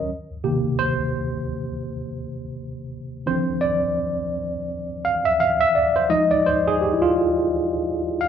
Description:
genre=R&B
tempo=85 BPM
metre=4/4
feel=swing 59% on 16ths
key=D phrygian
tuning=A4 = 440 Hz
part: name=tine electric piano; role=solo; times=0.0-8.3 s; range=C3 to F5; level=-20 LUFS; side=equal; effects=overdrive, fast stereo tremolo
room=moderate large studio reverb, RT60 0.9 s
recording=band playing live in one room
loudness=-20 LUFS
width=side -8 dB against mid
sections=0.0-8.3 A section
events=tine electric piano solo 0.0-8.3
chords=0.1 Cm7; 3.3 Dm7; 6.1 Fm7

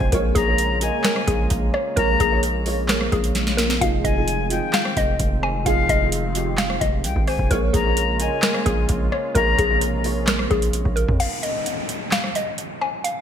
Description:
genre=hip hop, trap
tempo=130 BPM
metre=4/4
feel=half-time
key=unclear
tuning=A4 = 440 Hz
part: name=hollow square pluck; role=melody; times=0.0-13.2 s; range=Ab4 to Ab5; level=-25 LUFS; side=left 1 dB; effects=chorus, ping-pong delay
part: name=reedy silver concert flute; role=second line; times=0.0-9.8 s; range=F5 to Bb5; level=-26 LUFS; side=left 6 dB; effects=ping-pong delay
part: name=dark grand piano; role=accompaniment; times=0.0-11.2 s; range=F3 to Eb5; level=-27 LUFS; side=right 1 dB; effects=ensemble chorus
part: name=sweeping resonant pad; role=sustained chords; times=0.0-11.2 s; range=C3 to F4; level=-32 LUFS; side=right 1 dB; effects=chorus
part: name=distorted 808-style bass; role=bass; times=0.0-11.2 s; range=F1 to F2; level=-24 LUFS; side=equal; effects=distortion
part: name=booming analog drum machine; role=drums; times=0.0-13.2 s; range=crash cymbal, handclaps, hi-hat, kick drum, rim click, snare drum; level=-22 LUFS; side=equal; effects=overdrive, gated reverb
part: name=downlifter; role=sound effects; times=11.2-13.2 s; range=none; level=-29 LUFS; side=equal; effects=none
room=light reverb, digital ambience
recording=bright 1980s-style digital production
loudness=-18 LUFS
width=side -8 dB against mid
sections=0.0-11.2 A section; 11.2-13.2 B section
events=drum fill 3.4-3.8; break 11.2-13.2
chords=0.1 Bbm7; 3.8 Fm7; 7.5 Bbm7; 11.2 N.C.

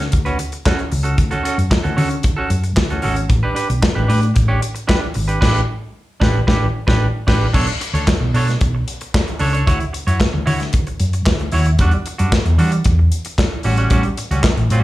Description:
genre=disco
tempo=113 BPM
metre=4/4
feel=straight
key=D major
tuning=A4 = 440 Hz
part: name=semi-hollow electric guitar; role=accompaniment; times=0.0-14.8 s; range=G3 to C#5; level=-22 LUFS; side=right 2 dB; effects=slapback echo
part: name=hollow-body short-scale fingered electric bass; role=bass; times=0.0-14.8 s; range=G#1 to E3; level=-17 LUFS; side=equal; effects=none
part: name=modern studio drum kit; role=drums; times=0.0-14.8 s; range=crash cymbal, handclaps, hi-hat, kick drum, snare drum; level=-18 LUFS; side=equal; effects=none
room=light reverb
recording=live gig heard through the venue's PA, club reverb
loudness=-15 LUFS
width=side -16 dB against mid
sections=0.0-7.5 A section; 7.5-14.8 B section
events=band accent 5.4-7.5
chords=0.0 Dmaj7; 3.3 A9sus4; 7.5 Bm9; 9.7 Dmaj9; 11.8 Em9; 13.6 A6

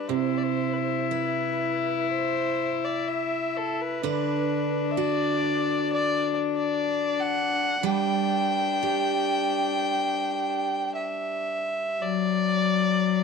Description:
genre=celtic folk, Celtic slow air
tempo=52-65 BPM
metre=4/4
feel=rubato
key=G major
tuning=A4 = 440 Hz
part: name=dark fiddle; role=melody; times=0.0-13.2 s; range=A4 to G5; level=-28 LUFS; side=right 1 dB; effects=none
part: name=warm cello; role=second line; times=0.0-13.2 s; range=F#3 to E4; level=-27 LUFS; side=left 9 dB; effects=none
part: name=picked steel-string acoustic guitar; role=accompaniment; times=0.0-12.3 s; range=C3 to B4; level=-31 LUFS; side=right 15 dB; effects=none
room=moderate spring reverb, RT60 1.7 s, small room ambience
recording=1960s-style stereo with parts hard left and right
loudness=-24 LUFS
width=side -5 dB against mid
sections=0.0-12.0 A section; 12.0-13.2 B section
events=none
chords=0.1 C; 4.0 D6; 7.8 G; 12.0 N.C.

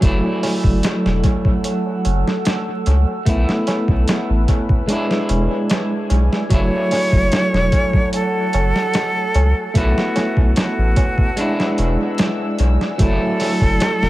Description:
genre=trip hop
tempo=74 BPM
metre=4/4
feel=straight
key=F# minor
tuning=A4 = 441 Hz
part: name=electric guitar at the edge of break-up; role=accompaniment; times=0.0-14.1 s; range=F#3 to E4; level=-21 LUFS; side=right 1 dB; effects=harmonic tremolo, tape echo
part: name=deep dark ambient pad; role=sustained chords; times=0.0-14.1 s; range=A4 to E6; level=-28 LUFS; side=left 1 dB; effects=chorus, built-in reverb
part: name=soft dub sub bass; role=bass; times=0.0-14.1 s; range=E1 to C#2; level=-17 LUFS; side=equal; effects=none
part: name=boom bap sampler-style drum kit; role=drums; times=0.0-14.1 s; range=hi-hat, kick drum, snare drum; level=-19 LUFS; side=equal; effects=analog delay
part: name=tabla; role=percussion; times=0.0-14.1 s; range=none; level=-32 LUFS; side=right 3 dB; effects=analog delay
part: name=jazz flute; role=melody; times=6.5-14.1 s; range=F#4 to C#5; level=-22 LUFS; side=equal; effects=dub echo
room=digital ambience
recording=echo-heavy mix, vinyl crackle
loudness=-15 LUFS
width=side -16 dB against mid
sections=0.0-14.1 A section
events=none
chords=0.0 F#m7; 3.3 B7sus4; 4.9 E7; 6.5 F#m7; 9.8 B7sus4; 11.4 E7; 13.0 F#m7

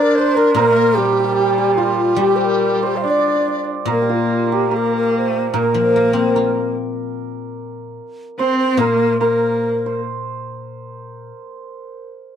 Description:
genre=chinese traditional, Chinese chamber ensemble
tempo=73 BPM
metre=2/4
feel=rubato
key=unclear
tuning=A4 = 440 Hz
part: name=mellow hollow xiao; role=melody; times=0.0-10.0 s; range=F4 to D5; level=-18 LUFS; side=right 1 dB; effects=none
part: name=bright horsehead fiddle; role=second line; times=0.0-10.0 s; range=G3 to D4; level=-21 LUFS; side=left 2 dB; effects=none
part: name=hammered dulcimer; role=second line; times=0.0-12.4 s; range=F4 to D5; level=-22 LUFS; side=right 7 dB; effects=none
part: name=reedy large dizi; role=second line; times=0.0-3.7 s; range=F4 to F5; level=-21 LUFS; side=left 6 dB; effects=none
part: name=guzheng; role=accompaniment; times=0.5-11.3 s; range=Bb2 to F4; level=-24 LUFS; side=left 4 dB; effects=none
room=light reverb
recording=dark, warm production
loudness=-14 LUFS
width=side -8 dB against mid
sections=0.0-3.9 A section; 3.9-12.4 B section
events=none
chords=none

